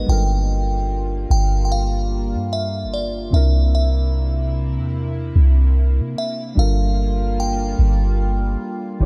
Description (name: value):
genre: R&B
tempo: 74 BPM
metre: 4/4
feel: swing 58% on 16ths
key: G dorian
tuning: A4 = 440 Hz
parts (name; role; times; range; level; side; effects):
- glassy synth bell; melody; 0.0-9.1 s; D5 to G5; -30 LUFS; equal; chorus, delay
- muted felt-like synth keys; accompaniment; 0.0-9.1 s; C3 to Db5; -31 LUFS; equal; chorus
- chorused pulse-width pad; sustained chords; 0.0-9.1 s; C3 to G4; -32 LUFS; equal; none
- soft 808-style bass; bass; 0.0-9.1 s; Eb1 to C3; -20 LUFS; equal; none
room: light reverb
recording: none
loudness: -19 LUFS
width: mono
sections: 0.0-9.1 A section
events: none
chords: 0.1 Gm7; 3.3 C7; 6.6 Gm7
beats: | 0.09 0.90 1.71 2.52 | 3.33 4.14 4.95 5.76 | 6.57 7.38 8.19 9.00